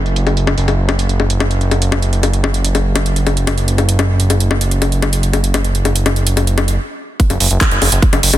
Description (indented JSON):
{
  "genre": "psychedelic trance",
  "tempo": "145 BPM",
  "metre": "4/4",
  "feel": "straight",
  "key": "unclear",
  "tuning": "A4 = 441 Hz",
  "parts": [
    { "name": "fat analog bass", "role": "bass", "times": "0.0-8.4 s", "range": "F#1", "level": "-14 LUFS", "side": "right 1 dB", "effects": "none" },
    { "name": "big-room dance drum kit", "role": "drums", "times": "0.1-8.4 s", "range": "bongos, handclaps, hi-hat", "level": "-17 LUFS", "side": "left 3 dB", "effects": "overdrive, low-pass filter on hats, low-pass filter on perc, low-pass filter on snare" },
    { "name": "electronic kick drum", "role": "drums", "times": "7.2-8.1 s", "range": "none", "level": "-12 LUFS", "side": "right 1 dB", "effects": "none" }
  ],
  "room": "digital ambience",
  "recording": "dense, heavily limited modern master",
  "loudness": "-12 LUFS",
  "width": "side -13 dB against mid",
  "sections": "0.0-7.2 A section; 7.2-8.4 B section",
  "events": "stop 6.8-7.2; drop 7.2-8.4",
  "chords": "none"
}